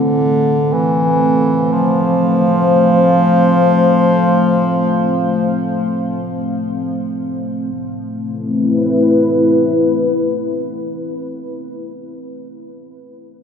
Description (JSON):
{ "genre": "dark ambient drone", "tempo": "free time", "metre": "none", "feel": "none", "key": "A minor", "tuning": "A4 = 441 Hz", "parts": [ { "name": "warm bass clarinet", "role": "melody", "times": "0.0-6.7 s", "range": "D3 to F3", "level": "-16 LUFS", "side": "left 1 dB", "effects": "tape echo" }, { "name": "dark analog pad", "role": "sustained chords", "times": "0.0-12.1 s", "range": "A3 to F5", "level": "-15 LUFS", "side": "left 1 dB", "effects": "chorus" } ], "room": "wet huge ambient reverb, RT60 8.1 s", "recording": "none", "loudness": "-12 LUFS", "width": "side -7 dB against mid", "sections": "0.0-7.7 A section; 7.7-11.7 B section", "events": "none", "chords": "0.0 F; 7.7 Amadd9" }